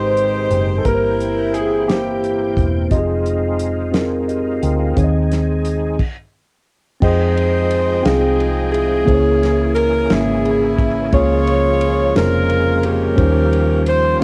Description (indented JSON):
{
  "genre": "slow gospel",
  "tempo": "58 BPM (dotted quarters)",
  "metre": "6/8",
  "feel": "straight",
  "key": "unclear",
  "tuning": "A4 = 440 Hz",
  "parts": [
    { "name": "warm baby grand piano", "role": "melody", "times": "0.0-2.6 s", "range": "G4 to C5", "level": "-26 LUFS", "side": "equal", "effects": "none" },
    { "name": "warm saxophone section", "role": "melody", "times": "0.0-2.9, 7.0-14.2 s", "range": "Bb3 to Db5", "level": "-20 LUFS", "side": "equal", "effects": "none" },
    { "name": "mellow tine electric piano", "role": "accompaniment", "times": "0.0-14.2 s", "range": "G2 to C6", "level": "-22 LUFS", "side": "equal", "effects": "none" },
    { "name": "overdriven tonewheel organ", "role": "sustained chords", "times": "0.0-14.2 s", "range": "Eb3 to G5", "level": "-29 LUFS", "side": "equal", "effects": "slow rotary speaker, chorus vibrato" },
    { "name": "hollow-body short-scale fingered electric bass", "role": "bass", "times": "0.0-14.2 s", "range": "E1 to F2", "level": "-23 LUFS", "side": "equal", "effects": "none" },
    { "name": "warm soul drum kit", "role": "drums", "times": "0.2-14.2 s", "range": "crash cymbal, hi-hat, kick drum, ride cymbal, snare drum", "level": "-23 LUFS", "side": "equal", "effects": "cassette tape" }
  ],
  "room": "light reverb",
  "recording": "home recording on cassette",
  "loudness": "-17 LUFS",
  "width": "mono",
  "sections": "0.0-7.0 A section; 7.0-14.2 B section",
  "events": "stop 6.0-7.0",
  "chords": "0.0 Abmaj7; 0.9 C7/G; 2.9 Fm7; 5.0 Ab/Eb; 6.0 N.C.; 7.0 Fm9; 9.1 Dbm6; 11.1 Bbm7/Db; 13.2 Eb13",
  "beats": "| 0.85 1.88 | 2.91 3.94 | 4.97 6.00 | 7.03 8.05 | 9.08 10.11 | 11.13 12.16 | 13.18 14.21"
}